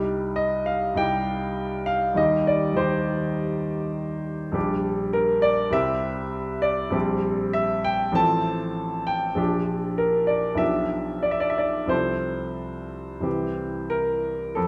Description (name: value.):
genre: classical, romantic character piece for solo piano.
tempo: 88-104 BPM.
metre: 4/4.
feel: rubato.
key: C minor.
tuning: A4 = 440 Hz.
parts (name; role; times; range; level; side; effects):
clear grand piano; solo; 0.0-14.7 s; A1 to A5; -25 LUFS; equal; none.
room: moderate scoring stage reverb, RT60 1.6 s.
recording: none.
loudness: -25 LUFS.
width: mono.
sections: 0.0-14.6 A section.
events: none.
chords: 0.0 Cm; 2.2 Cm/Eb; 4.5 Gm/Bb; 5.7 C; 6.9 C5/Bb; 8.2 F/A; 9.4 Gm7/Bb; 10.6 G7/B; 11.9 F/C; 13.3 C.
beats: 0.37 0.98 1.58 | 2.17 2.77 3.35 3.95 | 4.55 5.14 5.73 6.33 | 6.94 7.55 8.16 8.77 | 9.38 9.99 10.60 11.24 | 11.91 12.59 13.25 13.92 | 14.57.